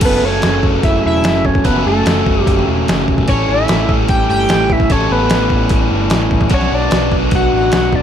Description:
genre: indie rock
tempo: 148 BPM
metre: 4/4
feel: straight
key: unclear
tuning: A4 = 440 Hz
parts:
  - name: sync lead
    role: melody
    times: 0.0-8.0 s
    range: A4 to G5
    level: -17 LUFS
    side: equal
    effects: chorus, plate reverb, analog delay
  - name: biting overdriven guitar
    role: riff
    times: 0.0-8.0 s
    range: F#2 to A4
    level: -16 LUFS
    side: equal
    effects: none
  - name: overdriven picked electric bass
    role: bass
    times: 0.0-8.0 s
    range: E1 to B1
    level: -19 LUFS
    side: equal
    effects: none
  - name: detuned 8-bit digital drum machine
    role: drums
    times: 0.0-8.0 s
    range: crash cymbal, hi-hat, kick drum, snare drum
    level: -16 LUFS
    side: equal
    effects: none
room: moderate small room ambience, RT60 0.5 s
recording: none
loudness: -11 LUFS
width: side -9 dB against mid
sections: 0.0-8.0 A section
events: none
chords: 0.0 F#m7; 3.3 A7; 6.5 Bm

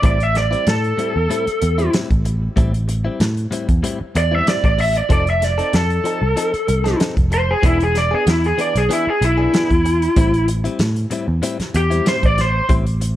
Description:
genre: straight-eighth soul blues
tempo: 95 BPM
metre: 4/4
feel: swing 54% on 16ths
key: A minor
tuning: A4 = 440 Hz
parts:
  - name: lead guitar through a small cranked amp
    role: melody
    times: 0.0-12.7 s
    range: E4 to E5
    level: -18 LUFS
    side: equal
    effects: overdrive
  - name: direct-recorded clean electric guitar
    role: stabs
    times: 0.0-13.1 s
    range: A2 to A4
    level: -26 LUFS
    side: left 3 dB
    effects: analog delay
  - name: vintage muted picked electric bass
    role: bass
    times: 0.0-13.2 s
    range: E1 to A2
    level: -19 LUFS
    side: equal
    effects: none
  - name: warm soul drum kit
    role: drums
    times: 0.0-13.2 s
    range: hi-hat, kick drum, snare drum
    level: -20 LUFS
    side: equal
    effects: none
room: small room ambience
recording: none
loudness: -15 LUFS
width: side -13 dB against mid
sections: 0.0-13.2 A section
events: lead electric guitar solo 0.0-13.2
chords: 0.0 Am7; 5.1 F7; 7.6 E7; 10.2 Am7

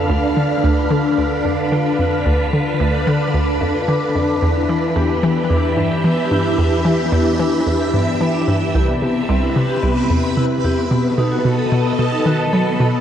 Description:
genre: ambient, sequencer-driven space music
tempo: 111 BPM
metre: 4/4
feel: straight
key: D dorian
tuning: A4 = 440 Hz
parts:
  - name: phased string machine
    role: sustained chords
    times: 0.0-13.0 s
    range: B2 to F5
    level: -19 LUFS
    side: equal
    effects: ensemble chorus, phaser, shimmer reverb
  - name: vibraphone with medium hard mallets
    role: arpeggios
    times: 0.0-12.9 s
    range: B3 to D6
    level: -24 LUFS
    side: left 2 dB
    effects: auto-pan, ping-pong delay
  - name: hollow square pluck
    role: riff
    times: 0.0-13.0 s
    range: C2 to F#3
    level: -18 LUFS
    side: equal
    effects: chorus, ping-pong delay
  - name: wind-like tuned noise texture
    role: texture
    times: 0.0-13.0 s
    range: B4 to B5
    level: -26 LUFS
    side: right 1 dB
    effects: built-in reverb, shimmer reverb
room: wet huge ambient reverb, RT60 7.7 s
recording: worn, warbling old tape, cassette tape, warbly pitch drift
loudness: -15 LUFS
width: side -9 dB against mid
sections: 0.0-13.0 A section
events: fade-in on vibraphone 0.0-13.0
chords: 0.0 Dm; 4.4 Em7; 8.7 Cmaj7; 10.9 B7

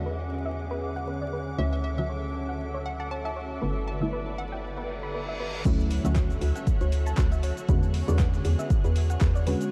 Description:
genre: deep house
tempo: 118 BPM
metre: 4/4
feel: swing 55% on 16ths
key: D major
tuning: A4 = 435 Hz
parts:
  - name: hollow square pluck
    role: melody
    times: 0.0-5.1 s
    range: E5 to A5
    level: -43 LUFS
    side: equal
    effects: chorus, vintage 12-bit sampler grit, tape echo
  - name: soft string machine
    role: sustained chords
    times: 0.0-9.7 s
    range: C#4 to F#5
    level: -40 LUFS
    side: equal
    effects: ensemble chorus, sidechain pumping
  - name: deep mellow chord stab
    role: stabs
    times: 0.0-9.7 s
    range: D3 to F#4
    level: -36 LUFS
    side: equal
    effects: chorus, sidechain pumping, delay
  - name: hollow knocking FM bass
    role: bass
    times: 0.0-9.6 s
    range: G1 to E2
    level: -31 LUFS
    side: equal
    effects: sidechain pumping
  - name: analog string pad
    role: texture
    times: 0.0-9.7 s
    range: D6 to F#6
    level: -47 LUFS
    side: equal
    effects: ensemble chorus
  - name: granular cloud pad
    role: texture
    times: 0.0-5.7 s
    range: D3 to F#5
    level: -45 LUFS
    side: equal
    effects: built-in reverb, sidechain pumping
  - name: soft round pluck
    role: arpeggios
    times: 0.1-9.6 s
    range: B4 to B5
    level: -40 LUFS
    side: equal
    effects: chorus, sidechain pumping, tape echo
  - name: reverse cymbal and impact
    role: sound effects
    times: 4.8-7.7 s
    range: none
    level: -44 LUFS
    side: equal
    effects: none
  - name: breakbeat sampler-style drum kit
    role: drums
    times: 5.7-9.6 s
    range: hi-hat, shaker, snare drum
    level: -53 LUFS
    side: equal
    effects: none
  - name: deep house drum kit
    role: drums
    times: 5.7-9.7 s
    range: cabasa, crash cymbal, handclaps, hi-hat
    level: -44 LUFS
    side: equal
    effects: none
  - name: electronic kick drum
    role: drums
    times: 5.7-9.3 s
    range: none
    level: -27 LUFS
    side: equal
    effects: none
room: moderate huge ambient reverb, RT60 7.8 s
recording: dreamy mix soaked in reverb, vinyl crackle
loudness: -27 LUFS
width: mono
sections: 0.0-5.7 A section; 5.7-9.7 B section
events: filter sweep on synth arpeggio sound 0.0-5.7; reverse cymbal 4.8-5.7; drop 5.7-9.7; impact 5.7-7.7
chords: 0.0 E13; 1.6 Dmaj9; 3.6 G6; 5.7 Dmaj9; 7.7 E13

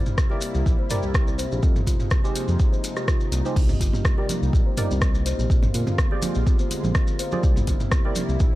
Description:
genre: afro house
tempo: 124 BPM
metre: 4/4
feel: straight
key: C minor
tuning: A4 = 440 Hz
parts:
  - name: warm analog pad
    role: sustained chords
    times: 0.0-8.6 s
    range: C3 to F4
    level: -32 LUFS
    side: left 1 dB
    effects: wide subtle chorus, sidechain pumping
  - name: smooth synth bass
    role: bass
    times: 0.0-8.5 s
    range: F1 to Bb2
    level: -25 LUFS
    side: equal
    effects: sidechain pumping
  - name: kalimba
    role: arpeggios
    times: 0.1-8.5 s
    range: G3 to C5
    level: -31 LUFS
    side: left 1 dB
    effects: sidechain pumping, digital delay
  - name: deep house drum kit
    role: drums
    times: 0.1-8.3 s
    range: crash cymbal, hi-hat, rim click, toms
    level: -29 LUFS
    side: equal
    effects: none
  - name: maracas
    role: percussion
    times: 0.1-8.5 s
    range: none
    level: -38 LUFS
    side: left 2 dB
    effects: none
  - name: electronic kick drum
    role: drums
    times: 0.2-8.5 s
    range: none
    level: -21 LUFS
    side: equal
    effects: none
  - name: deep mellow chord stab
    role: stabs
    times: 0.3-8.1 s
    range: Eb4 to D5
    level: -33 LUFS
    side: right 3 dB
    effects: chorus, sidechain pumping, digital delay
  - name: congas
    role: percussion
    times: 3.6-8.3 s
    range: none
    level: -32 LUFS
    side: right 3 dB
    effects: none
room: little or no reverb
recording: dark, warm production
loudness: -20 LUFS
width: side -17 dB against mid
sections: 0.0-8.6 A section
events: none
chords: 0.0 C7; 1.6 Fm7; 3.6 Cm7; 5.5 Bb7; 7.4 C7

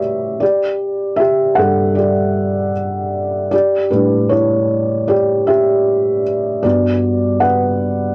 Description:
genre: pop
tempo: 77 BPM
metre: 4/4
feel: straight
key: unclear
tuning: A4 = 440 Hz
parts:
  - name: felt-muted upright piano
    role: solo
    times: 0.0-8.1 s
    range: G2 to F#5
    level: -13 LUFS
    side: equal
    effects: cassette tape
room: moderate booth ambience, RT60 0.2 s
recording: home recording on cassette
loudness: -13 LUFS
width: side -27 dB against mid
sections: 0.0-8.1 A section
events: felt piano solo 0.0-8.1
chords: 0.4 Em11/G; 3.5 A7sus4; 6.6 Gmaj7

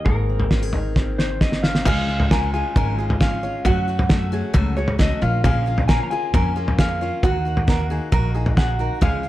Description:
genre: indie folk with a building arrangement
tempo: 134 BPM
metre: 4/4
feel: straight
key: Db major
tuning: A4 = 440 Hz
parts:
  - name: electric guitar through a small old amp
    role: melody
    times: 0.0-9.3 s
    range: Bb4 to Bb5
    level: -26 LUFS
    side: equal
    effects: harmonic tremolo, slapback echo
  - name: fingerpicked steel-string acoustic guitar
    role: accompaniment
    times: 0.0-1.9 s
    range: Ab2 to Ab4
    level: -28 LUFS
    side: left 2 dB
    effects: none
  - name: upright bass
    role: bass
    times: 0.0-9.3 s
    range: Ab1 to Gb2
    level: -24 LUFS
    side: equal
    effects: none
  - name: cloth-damped thuddy drum kit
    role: drums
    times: 0.1-9.1 s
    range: crash cymbal, kick drum, snare drum, toms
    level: -19 LUFS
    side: equal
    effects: none
  - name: picked steel-string acoustic guitar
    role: accompaniment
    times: 1.9-9.3 s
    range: Gb2 to Gb4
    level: -28 LUFS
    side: left 6 dB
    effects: none
  - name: tenor ukulele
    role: arpeggios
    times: 1.9-9.3 s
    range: Gb4 to Db5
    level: -30 LUFS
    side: right 5 dB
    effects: slapback echo
room: small room ambience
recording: dark, warm production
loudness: -18 LUFS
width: side -15 dB against mid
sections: 0.0-1.9 A section; 1.9-9.3 B section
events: drum fill 1.0-1.9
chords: 0.1 Abadd9; 1.9 Db; 3.7 Gbm; 5.2 Bbm; 7.2 Ebm

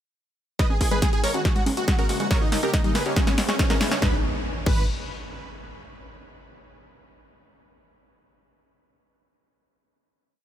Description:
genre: uplifting trance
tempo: 140 BPM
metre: 4/4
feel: straight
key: G# minor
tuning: A4 = 440 Hz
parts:
  - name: big supersaw lead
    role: melody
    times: 0.6-4.8 s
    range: C#4 to D#5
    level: -28 LUFS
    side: right 1 dB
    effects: sidechain pumping, ping-pong delay
  - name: wide unison pluck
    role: arpeggios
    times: 0.6-4.9 s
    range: G3 to G#4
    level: -33 LUFS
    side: left 4 dB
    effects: none
  - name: electronic kick drum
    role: drums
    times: 0.6-4.8 s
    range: none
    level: -22 LUFS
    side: equal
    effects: none
  - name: punchy analog drum machine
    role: drums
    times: 0.6-4.8 s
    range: congas, crash cymbal, hi-hat, snare drum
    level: -28 LUFS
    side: equal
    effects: none
  - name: riser and impact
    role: sound effects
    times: 2.6-5.7 s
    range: none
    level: -33 LUFS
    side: left 1 dB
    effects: none
  - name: plucky analog bass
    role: bass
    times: 0.8-4.9 s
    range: E1 to D#2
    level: -33 LUFS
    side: equal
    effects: sidechain pumping, high-pass filter
room: little or no reverb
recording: none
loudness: -20 LUFS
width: side -11 dB against mid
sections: 0.6-4.0 build; 4.0-5.7 final chord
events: build-up 0.6-4.0; drum fill 0.6-4.0; filter sweep on synth arpeggio sound 0.6-4.0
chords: 0.6 G#m; 1.5 F#add9; 2.3 D#7; 3.2 C#m7; 4.0 G#m

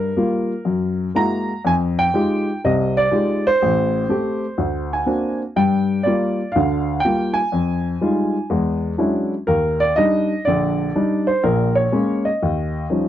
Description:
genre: solo jazz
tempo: 123 BPM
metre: 4/4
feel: swing 68% on 8ths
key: Eb major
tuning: A4 = 439 Hz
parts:
  - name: warm baby grand piano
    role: solo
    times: 0.0-13.1 s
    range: A1 to Bb5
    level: -17 LUFS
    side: equal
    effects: none
room: light reverb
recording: dry, close 1970s-style studio recording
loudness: -17 LUFS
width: side -11 dB against mid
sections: 0.0-13.1 A section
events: none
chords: 0.0 Gm7; 0.7 Gb9; 1.6 Fm9; 3.6 Am7; 4.6 Daug7; 5.6 Gm7; 7.5 Fm9; 8.5 E13; 9.5 Ebmaj7; 11.4 Bbm7; 12.4 Eb9

